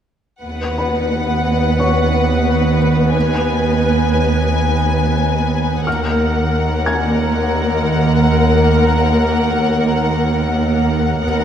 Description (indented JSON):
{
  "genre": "cinematic",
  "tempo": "89 BPM",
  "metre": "4/4",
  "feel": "straight",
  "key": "Eb minor",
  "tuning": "A4 = 440 Hz",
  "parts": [
    { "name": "rich studio violin section", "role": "melody", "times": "0.4-11.4 s", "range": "F#5 to Ab5", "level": "-22 LUFS", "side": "left 6 dB", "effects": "none" },
    { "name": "warm symphonic viola section", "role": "accompaniment", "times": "0.4-11.4 s", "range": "Bb3 to B4", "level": "-19 LUFS", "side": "equal", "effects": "none" },
    { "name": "rich symphonic cello section", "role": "bass", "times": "0.4-11.4 s", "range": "D#2", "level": "-20 LUFS", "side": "right 2 dB", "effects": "none" },
    { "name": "warm symphonic double bass section", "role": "bass", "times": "0.4-11.4 s", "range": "D#2", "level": "-20 LUFS", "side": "right 3 dB", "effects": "none" },
    { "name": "metallic inharmonic drone", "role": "drone", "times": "1.3-11.4 s", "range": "D#2", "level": "-22 LUFS", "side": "right 1 dB", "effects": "chorus, built-in reverb" },
    { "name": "felt-muted upright piano", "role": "texture", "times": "0.8-11.3 s", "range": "B4 to Ab6", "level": "-26 LUFS", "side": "left 2 dB", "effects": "none" }
  ],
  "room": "moderate scoring stage reverb, RT60 2.0 s",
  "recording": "none",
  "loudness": "-13 LUFS",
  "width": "side -9 dB against mid",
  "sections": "0.4-11.4 A section",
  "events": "none",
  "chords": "0.4 B/D#; 5.9 Ebmadd9"
}